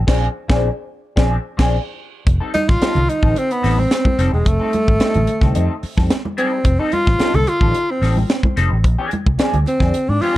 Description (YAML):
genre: funk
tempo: 109 BPM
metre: 4/4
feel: straight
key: F mixolydian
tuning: A4 = 440 Hz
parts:
  - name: vintage muted fingered electric bass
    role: bass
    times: 0.0-10.2 s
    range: E1 to Ab2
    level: -18 LUFS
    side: equal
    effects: none
  - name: clean electric guitar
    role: accompaniment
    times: 0.1-10.4 s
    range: F3 to A4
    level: -24 LUFS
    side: left 3 dB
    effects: wah, plate reverb
  - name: tight funk drum kit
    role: drums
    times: 0.1-10.4 s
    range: crash cymbal, hi-hat, kick drum, snare drum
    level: -18 LUFS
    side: equal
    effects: none
  - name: warm tenor saxophone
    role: melody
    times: 2.5-10.4 s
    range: Ab3 to A4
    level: -19 LUFS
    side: equal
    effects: plate reverb, analog delay
  - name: congas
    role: percussion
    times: 2.6-10.3 s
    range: none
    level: -26 LUFS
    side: right 2 dB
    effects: none
room: light reverb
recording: dark, warm production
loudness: -15 LUFS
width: side -16 dB against mid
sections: 0.0-2.3 A section; 2.3-10.4 B section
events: band accent 0.1-2.3; tenor saxophone solo 2.3-10.4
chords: 0.1 Bb9; 2.3 F9 (rootless); 8.8 Bb9 (rootless)